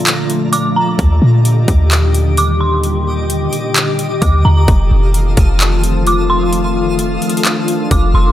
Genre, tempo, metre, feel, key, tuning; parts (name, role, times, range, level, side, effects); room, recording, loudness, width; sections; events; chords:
hip hop, atmospheric cloud-rap; 130 BPM; 4/4; half-time; A4 = 440 Hz
glassy FM pad; sustained chords; 0.0-8.3 s; Bb2 to G4; -17 LUFS; left 1 dB; ensemble chorus, built-in reverb, sidechain pumping
twinkling granular texture; texture; 0.0-8.3 s; A3 to Eb6; -26 LUFS; left 1 dB; built-in reverb
trap drum kit; drums; 0.1-8.0 s; handclaps, hi-hat, kick drum; -15 LUFS; equal; overdrive
dark detuned synth bell; melody; 0.5-8.3 s; Bb5 to D6; -19 LUFS; right 1 dB; chorus, digital delay
clean 808-style bass; bass; 1.0-8.3 s; F1 to Bb2; -13 LUFS; equal
light reverb; -11 LUFS; side -12 dB against mid
0.0-8.3 A section
break 0.0-1.0
0.0 Bbmaj7; 1.0 Ebmaj7; 4.7 F7